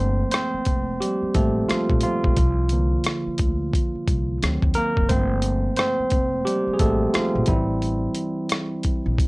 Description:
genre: R&B, neo-soul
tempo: 88 BPM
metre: 4/4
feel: swing 60% on 16ths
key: G dorian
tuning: A4 = 435 Hz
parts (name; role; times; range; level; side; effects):
- barky tine electric piano; accompaniment; 0.0-9.3 s; D3 to C5; -23 LUFS; right 1 dB; overdrive
- upright bass; bass; 0.0-9.2 s; F1 to Eb2; -25 LUFS; equal; none
- boom bap sampler-style drum kit; drums; 0.3-9.3 s; hi-hat, kick drum, rim click; -23 LUFS; equal; none
room: light reverb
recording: worn, warbling old tape, cassette tape, warbly pitch drift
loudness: -20 LUFS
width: side -24 dB against mid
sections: 0.0-9.3 A section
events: tine electric piano solo 0.0-9.3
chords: 0.0 Gm11; 2.4 C7sus4; 4.4 D7b9; 5.1 Gm11; 7.5 Am7

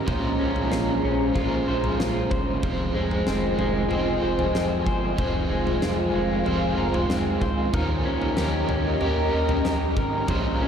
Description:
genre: dream pop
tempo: 94 BPM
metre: 4/4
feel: straight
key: F minor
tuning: A4 = 439 Hz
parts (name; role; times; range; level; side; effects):
- overdriven electric guitar; accompaniment; 0.0-10.7 s; F2 to C5; -29 LUFS; right 2 dB; tremolo, wide subtle chorus
- ethereal airy pad; sustained chords; 0.0-10.7 s; Db4 to Bb5; -27 LUFS; equal; ensemble chorus, built-in reverb
- electric guitar at the edge of break-up; arpeggios; 0.0-10.7 s; F2 to C5; -28 LUFS; left 2 dB; wide subtle chorus, ping-pong delay
- chorused synth bass; bass; 0.0-10.7 s; F1 to Eb2; -29 LUFS; equal; none
- huge arena drum kit; drums; 0.1-10.4 s; kick drum, snare drum, toms; -28 LUFS; right 1 dB; none
room: wet lush hall reverb, RT60 2.0 s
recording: dreamy mix soaked in reverb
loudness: -21 LUFS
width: side -8 dB against mid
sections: 0.0-10.7 A section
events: none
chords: 0.1 Bbm9; 2.6 Fm7; 7.7 Eb7

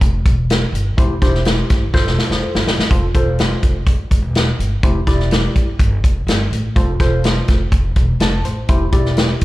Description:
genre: uptempo 1960s-style soul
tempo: 124 BPM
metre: 4/4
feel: straight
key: F major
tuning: A4 = 440 Hz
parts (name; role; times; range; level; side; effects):
- upright bass; bass; 0.0-9.4 s; E1 to A1; -18 LUFS; equal; none
- natural country drum kit; drums; 0.0-9.4 s; hi-hat, kick drum, snare drum; -16 LUFS; equal; none
- tine electric piano; accompaniment; 1.0-9.4 s; D4 to A5; -23 LUFS; left 1 dB; overdrive, phaser, slapback echo
room: little or no reverb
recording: live gig heard through the venue's PA, club ambience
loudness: -14 LUFS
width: side -17 dB against mid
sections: 0.0-2.9 A section; 2.9-9.4 A section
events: drum fill 1.9-2.9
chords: 0.0 N.C.; 1.0 C; 1.9 F; 4.8 C (rootless); 6.8 F; 8.7 C

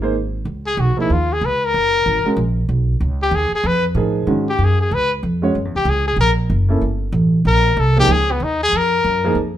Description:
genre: jazz, small-group swing and bop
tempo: 189 BPM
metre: 4/4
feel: swing 62% on 8ths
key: Db mixolydian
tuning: A4 = 440 Hz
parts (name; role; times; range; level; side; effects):
- warm grand piano; accompaniment; 0.0-9.4 s; Eb3 to Db5; -20 LUFS; right 3 dB; none
- upright bass; bass; 0.0-9.6 s; Gb1 to A2; -18 LUFS; right 1 dB; none
- clear trumpet; melody; 0.7-9.4 s; Cb4 to Cb5; -17 LUFS; left 2 dB; none
room: moderate studio reverb, RT60 0.8 s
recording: minimal, uncompressed stereo recording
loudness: -15 LUFS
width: side -12 dB against mid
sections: 0.5-9.6 A section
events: trumpet solo 0.5-9.6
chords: 0.5 Db7sus2; 1.7 Gbadd9; 3.0 Dbadd9; 4.3 Ab5; 4.9 Db; 5.6 Gb7; 6.8 Gmadd9; 8.1 Dbadd9

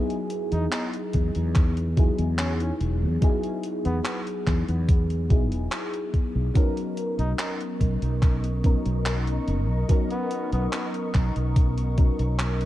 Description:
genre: vaporwave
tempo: 72 BPM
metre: 4/4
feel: straight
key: B major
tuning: A4 = 440 Hz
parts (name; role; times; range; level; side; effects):
- mellow FM electric piano; accompaniment; 0.0-12.7 s; F#3 to A#4; -29 LUFS; left 1 dB; analog chorus, tape echo
- gated 80s digital drum machine; drums; 0.1-12.7 s; handclaps, hi-hat; -34 LUFS; equal; gated reverb, overdrive
- warm flugelhorn; melody; 0.5-10.9 s; B3 to D#4; -37 LUFS; equal; tape echo
- mellow fretless electric bass; bass; 0.5-12.7 s; E1 to E2; -25 LUFS; equal; tube saturation, lush chorus
- electronic kick drum; drums; 1.1-12.1 s; none; -21 LUFS; equal; overdrive
- soft string machine; sustained chords; 6.6-12.7 s; A#4 to C#6; -38 LUFS; left 1 dB; phaser, ensemble chorus, vintage 12-bit sampler grit
room: digital ambience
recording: dark, warm production, cassette tape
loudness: -22 LUFS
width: side -14 dB against mid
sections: 0.0-12.7 A section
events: none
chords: 0.0 Emaj9; 6.6 Bmaj9

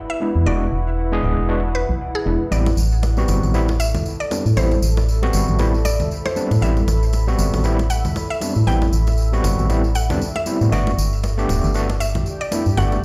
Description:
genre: deep house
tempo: 117 BPM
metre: 4/4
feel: swing 57% on 16ths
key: A dorian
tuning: A4 = 440 Hz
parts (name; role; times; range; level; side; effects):
- deep dark ambient pad; texture; 0.0-13.0 s; E4 to B5; -32 LUFS; equal; chorus, built-in reverb
- mallet-like synth pluck; melody; 0.1-13.0 s; G#4 to G5; -30 LUFS; equal; chorus, dub echo
- overdriven tine electric piano; stabs; 0.2-13.0 s; G3 to G#4; -26 LUFS; equal; fast tremolo, dub echo
- organ-like FM bass; bass; 0.4-13.0 s; D1 to A2; -21 LUFS; equal; none
- tambourine; percussion; 2.5-13.0 s; none; -35 LUFS; equal; none
- congas; percussion; 2.7-13.0 s; none; -30 LUFS; equal; none
room: little or no reverb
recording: played on a big sound system in a bare room, large studio reverb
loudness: -19 LUFS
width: mono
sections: 0.0-13.0 A section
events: none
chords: 0.0 E7; 2.5 Am9; 10.7 Gmaj9

